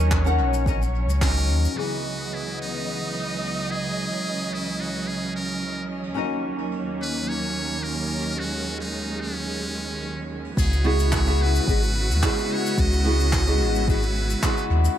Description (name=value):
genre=sunset chillout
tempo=109 BPM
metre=4/4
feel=straight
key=C# dorian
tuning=A4 = 440 Hz
part: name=nylon-string guitar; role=accompaniment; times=0.0-15.0 s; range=C#3 to F#5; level=-28 LUFS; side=moving between left 6 dB and right 4 dB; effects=auto-pan, low-pass filter, analog delay
part: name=rich studio string section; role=sustained chords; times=0.0-14.9 s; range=C#2 to D#5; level=-29 LUFS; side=right 2 dB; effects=low-pass filter
part: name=warm sub bass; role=bass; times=0.0-1.7, 10.6-14.9 s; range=G#1 to E2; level=-21 LUFS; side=equal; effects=none
part: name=electronic kick drum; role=drums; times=0.1-1.3, 10.6-14.5 s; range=none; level=-24 LUFS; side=equal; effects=none
part: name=jazz brush drum kit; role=drums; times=0.1-15.0 s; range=crash cymbal, handclaps, hi-hat, shaker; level=-34 LUFS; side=left 1 dB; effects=low-pass filter on hats, low-pass filter on cymbals, low-pass filter on perc, low-pass filter on snare, low-pass filter on room, tape echo
part: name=trumpet with metal mute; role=melody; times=1.2-14.7 s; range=C#4 to D#5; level=-29 LUFS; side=equal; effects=analog delay
room=light reverb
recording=echo-heavy mix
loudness=-22 LUFS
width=side -10 dB against mid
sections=0.0-1.8 A section; 1.8-10.6 B section; 10.6-15.0 C section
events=filter sweep on nylon-string guitar 1.8-10.6; filter sweep on string section 1.8-10.6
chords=0.0 D#m7; 1.8 C#m11; 6.2 D#m7; 10.6 C#m11